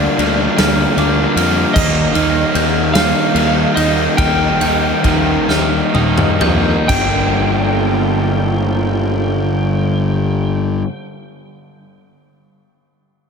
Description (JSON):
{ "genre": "post-rock", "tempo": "41-51 BPM (dotted quarters)", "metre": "6/8", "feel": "straight", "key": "G minor", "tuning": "A4 = 439 Hz", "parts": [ { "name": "electric slide guitar", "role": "melody", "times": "0.0-10.6 s", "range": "D5 to G5", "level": "-22 LUFS", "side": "equal", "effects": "slapback echo, digital delay" }, { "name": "warm analog pad", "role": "sustained chords", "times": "0.0-10.6 s", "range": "G3 to G5", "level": "-26 LUFS", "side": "right 1 dB", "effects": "none" }, { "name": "glockenspiel with soft plastic mallets", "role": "arpeggios", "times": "0.0-7.4 s", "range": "D6 to G6", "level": "-25 LUFS", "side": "right 1 dB", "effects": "slapback echo, digital delay" }, { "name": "crunchy overdriven guitar", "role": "riff", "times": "0.0-10.9 s", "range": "G2 to Eb4", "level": "-16 LUFS", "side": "left 1 dB", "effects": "none" }, { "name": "fuzz fingered electric bass", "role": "bass", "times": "0.0-10.8 s", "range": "G1 to F2", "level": "-19 LUFS", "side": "equal", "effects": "overdrive" }, { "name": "huge arena drum kit", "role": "drums", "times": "0.2-7.1 s", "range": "crash cymbal, kick drum, ride cymbal, snare drum, toms", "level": "-19 LUFS", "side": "equal", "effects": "none" } ], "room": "moderate lush hall reverb, RT60 3.4 s", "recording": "big arena sound", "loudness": "-12 LUFS", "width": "side -6 dB against mid", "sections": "0.0-6.9 A section; 6.9-9.8 B section", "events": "slowing down 1.8-6.9; drum fill 5.5-6.9", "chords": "0.0 Gm7/D; 1.8 Eb; 6.9 Gm7" }